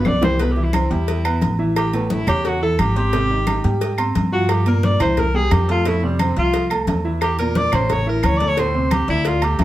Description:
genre	Afro-Cuban jazz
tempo	176 BPM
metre	4/4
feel	straight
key	C major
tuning	A4 = 440 Hz
part	breathy tenor saxophone	melody	0.0-9.6 s	G3 to D5	-22 LUFS	left 1 dB	none
part	warm concert grand piano	accompaniment	0.0-9.6 s	A2 to C6	-23 LUFS	right 2 dB	none
part	upright bass	bass	0.1-9.6 s	Ab1 to Ab2	-21 LUFS	equal	none
part	claves	percussion	0.1-9.6 s	none	-34 LUFS	left 2 dB	none
part	congas	percussion	0.1-9.6 s	none	-25 LUFS	left 1 dB	none
part	timbales and agogo bells	percussion	0.1-9.6 s	none	-26 LUFS	right 4 dB	none
part	bongos and cowbell	percussion	0.2-9.6 s	none	-29 LUFS	left 4 dB	none
room	moderate studio reverb, RT60 0.6 s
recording	heard from further back in the room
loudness	-16 LUFS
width	side -14 dB against mid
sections	0.4-9.6 A section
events	drum fill 0.0-0.4; tenor saxophone solo 0.0-9.6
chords	0.4 Cmaj7; 1.8 A; 3.1 Abmaj7; 4.5 Gm7; 5.2 C; 5.9 Fmaj7; 7.2 A7b9; 7.9 A; 8.6 D7(no3)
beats	0.05 | 0.40 0.74 1.08 1.42 | 1.76 2.11 2.45 2.79 | 3.13 3.47 3.81 4.15 | 4.50 4.84 5.18 5.52 | 5.86 6.20 6.54 6.88 | 7.22 7.56 7.89 8.23 | 8.57 8.91 9.25 9.59

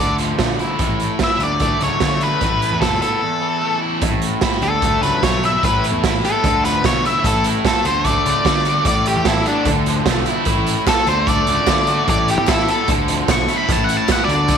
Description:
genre	indie rock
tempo	149 BPM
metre	4/4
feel	straight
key	A major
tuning	A4 = 439 Hz
part	octave-fuzz lead guitar	melody	0.0-14.6 s	D4 to C#6	-20 LUFS	left 2 dB	distortion
part	crunchy overdriven guitar	riff	0.0-14.6 s	E2 to A4	-21 LUFS	equal	none
part	fuzz picked electric bass	bass	0.0-14.6 s	F1 to D3	-23 LUFS	left 2 dB	overdrive
part	raw garage drum kit	drums	0.2-14.6 s	hi-hat, kick drum, snare drum	-20 LUFS	right 3 dB	none
part	group handclap	percussion	10.9-14.2 s	none	-30 LUFS	left 16 dB	none
room	moderate echo chamber reverb, RT60 1.7 s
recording	1960s-style stereo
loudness	-15 LUFS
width	side -7 dB against mid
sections	0.0-4.0 A section; 4.0-14.6 B section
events	break 3.2-4.0; lead electric guitar solo 4.0-14.6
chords	0.0 Dmadd9; 0.8 A5; 1.4 Dadd9; 2.4 Asus2; 3.2 Esus4; 4.0 A5; 4.6 Dadd9; 5.6 Asus2; 6.4 Dmadd9; 7.2 N.C.; 7.9 D; 8.9 Asus2; 9.7 Dmadd9; 10.5 N.C.; 11.1 D; 12.1 Asus2; 12.9 Dmadd9; 13.7 A5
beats	0.40 | 0.80 1.20 1.61 2.01 | 2.41 2.82 3.22 3.62 | 4.03 4.43 4.83 5.23 | 5.64 6.04 6.44 6.84 | 7.25 7.65 8.05 8.46 | 8.86 9.26 9.66 10.07 | 10.47 10.87 11.28 11.68 | 12.08 12.49 12.89 13.29 | 13.70 14.10 14.50

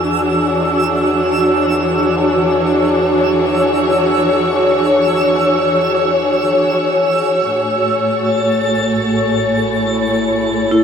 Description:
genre	ambient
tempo	50 BPM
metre	4/4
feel	straight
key	unclear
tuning	A4 = 444 Hz
part	dark studio string section	sustained chords	0.0-10.8 s	A2 to C#5	-13 LUFS	left 1 dB	shimmer reverb
part	deep rumbling drone	bass	0.0-10.8 s	A1 to E2	-35 LUFS	equal	built-in reverb
part	twinkling granular texture	texture	0.0-10.8 s	E6 to A6	-21 LUFS	right 4 dB	built-in reverb, shimmer reverb
part	vibraphone with hard mallets	arpeggios	10.7-10.8 s	E4	-10 LUFS	equal	none
room	wet huge ambient reverb, RT60 8.0 s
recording	none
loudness	-12 LUFS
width	side -7 dB against mid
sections	0.0-7.5 A section; 7.5-10.8 B section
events	none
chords	0.0 E13; 7.5 A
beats	0.29 1.49 | 2.69 3.89 5.09 6.29 | 7.49 8.69 9.89

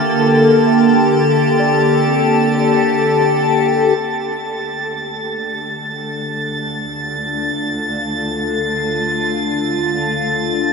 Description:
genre	ambient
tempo	free time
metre	none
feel	none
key	D minor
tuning	A4 = 440 Hz
part	evolving wavetable pad	sustained chords	0.0-10.7 s	D3 to A4	-15 LUFS	left 1 dB	chorus, built-in reverb, phaser
part	worn celesta	arpeggios	0.0-6.6 s	C4 to C6	-28 LUFS	right 1 dB	none
part	drifting glass-harmonics texture	texture	0.0-10.7 s	A6	-22 LUFS	right 2 dB	chorus, built-in reverb
part	dark chamber cello section	bass	4.0-10.7 s	D2	-28 LUFS	right 1 dB	none
room	wet huge ambient reverb, RT60 7.9 s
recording	in a vast, echoing space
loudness	-14 LUFS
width	side -4 dB against mid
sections	0.0-4.0 A section; 4.0-10.7 B section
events	fade-in on ambient pad 4.0-10.7; fade-in on cello section 4.0-10.7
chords	0.0 Gmadd9/D; 4.0 Dm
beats	free time

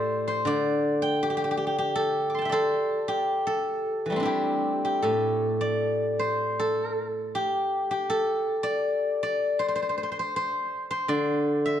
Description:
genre	chinese traditional, Chinese solo plucked strings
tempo	80 BPM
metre	4/4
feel	rubato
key	D shang mode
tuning	A4 = 440 Hz
part	steel-string zither	solo	0.0-11.8 s	A2 to D6	-24 LUFS	equal	none
room	light reverb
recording	dark, warm production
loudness	-24 LUFS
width	side -10 dB against mid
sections	0.0-11.8 A section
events	none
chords	none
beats	0.47 1.22 | 1.98 2.73 3.48 4.26 | 5.05 5.83 6.60 7.36 | 8.11 8.86 9.61 10.36 | 11.10

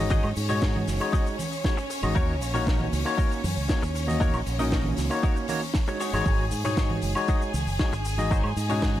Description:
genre	nu-disco, nu disco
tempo	117 BPM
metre	4/4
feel	straight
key	unclear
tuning	A4 = 440 Hz
part	overdriven tine electric piano	accompaniment	0.0-9.0 s	Ab3 to Eb5	-30 LUFS	left 2 dB	auto-pan, sidechain pumping, tape echo
part	bright studio violin section	sustained chords	0.0-9.0 s	Db4 to Ab5	-35 LUFS	equal	sidechain pumping
part	fingered electric bass with an envelope filter	bass	0.0-9.0 s	Gb1 to Ab2	-28 LUFS	right 1 dB	none
part	direct-recorded clean electric guitar	riff	0.1-9.0 s	Eb4 to Eb5	-34 LUFS	left 4 dB	ensemble chorus, tape echo
part	electronic kick drum	drums	0.1-8.9 s	none	-25 LUFS	right 1 dB	none
part	tight funk drum kit	drums	0.1-8.9 s	hi-hat, shaker, snare drum, woodblock	-34 LUFS	left 2 dB	none
part	egg shaker and congas	percussion	0.1-9.0 s	none	-36 LUFS	right 4 dB	none
room	small room reverb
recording	none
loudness	-23 LUFS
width	side -13 dB against mid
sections	0.0-9.0 A section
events	none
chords	0.0 Ab7sus4; 2.2 Ebm7; 6.0 Ab7sus4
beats	| 0.10 0.62 1.13 1.64 | 2.16 2.67 3.18 3.69 | 4.21 4.72 5.23 5.75 | 6.26 6.77 7.28 7.80 | 8.31 8.82

